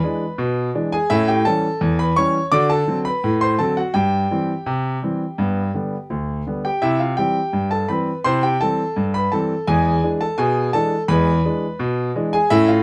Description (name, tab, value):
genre	ragtime piano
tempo	84 BPM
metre	2/4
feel	straight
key	C major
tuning	A4 = 439 Hz
part	warm concert grand piano	solo	0.0-12.8 s	D2 to D6	-20 LUFS	equal	none
room	light reverb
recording	none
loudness	-20 LUFS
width	mono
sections	0.0-12.8 A section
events	none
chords	0.0 E7; 1.1 A7; 2.5 D7; 3.9 C/G; 5.4 G; 6.8 C; 9.7 E7